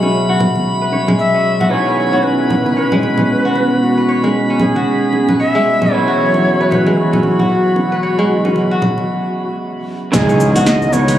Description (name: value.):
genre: organic downtempo.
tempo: 114 BPM.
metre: 4/4.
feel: swing 59% on 16ths.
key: C# minor.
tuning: A4 = 437 Hz.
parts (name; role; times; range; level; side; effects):
electric guitar through a small old amp; accompaniment; 0.0-11.2 s; C#3 to G#4; -21 LUFS; right 2 dB; warbly pitch drift, sidechain pumping.
warbly tape-like pad; sustained chords; 0.0-11.2 s; C#2 to E5; -17 LUFS; equal; chorus, built-in reverb, sidechain pumping.
kora; arpeggios; 0.0-11.2 s; G#3 to C#5; -19 LUFS; equal; low-pass filter, ping-pong delay.
bongos and congas; percussion; 0.0-11.2 s; none; -20 LUFS; right 1 dB; none.
drifting glass-harmonics texture; texture; 0.0-9.1 s; B5; -26 LUFS; right 1 dB; chorus, built-in reverb.
bright reedy Native American-style cedar flute; melody; 1.2-11.2 s; F#4 to E5; -18 LUFS; left 1 dB; ping-pong delay.
upright bass; bass; 10.1-11.1 s; C#2; -16 LUFS; equal; none.
deep house drum kit; drums; 10.1-11.2 s; cabasa, hi-hat, snare drum; -19 LUFS; equal; overdrive, low-pass filter on hats, low-pass filter on perc, low-pass filter on snare.
electronic kick drum; drums; 10.1-10.3 s; none; -18 LUFS; equal; overdrive.
impact; sound effects; 10.1-11.2 s; none; -22 LUFS; equal; none.
room: moderate huge ambient reverb, RT60 6.6 s.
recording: recorded on a phone in the room, club ambience.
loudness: -12 LUFS.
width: side -11 dB against mid.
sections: 0.0-10.1 A section; 10.1-11.2 B section.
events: break 9.1-10.1; impact 10.1-11.2.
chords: 0.0 Esus2/C#; 1.7 C#m9; 5.9 Esus2/C#.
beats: 0.13 0.66 1.19 | 1.71 2.24 2.77 3.29 | 3.82 4.34 4.87 5.40 | 5.92 6.45 6.98 7.50 | 8.03 8.55 9.08 9.61 | 10.13 10.66.